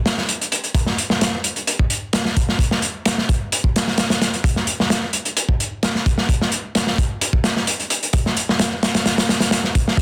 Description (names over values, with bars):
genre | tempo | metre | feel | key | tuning
breakbeat | 130 BPM | 4/4 | straight | none | none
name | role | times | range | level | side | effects
crunchy breakbeat drum kit | drums | 0.1-10.0 s | hi-hat, kick drum, snare drum | -20 LUFS | equal | none
room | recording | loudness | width
light reverb | dense, heavily limited modern master | -20 LUFS | mono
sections
0.0-10.0 A section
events
none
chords
none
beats
0.28 | 0.75 1.21 1.67 2.13 | 2.59 3.06 3.52 3.98 | 4.44 4.90 5.36 5.82 | 6.29 6.75 7.21 7.67 | 8.13 8.59 9.05 9.52 | 9.98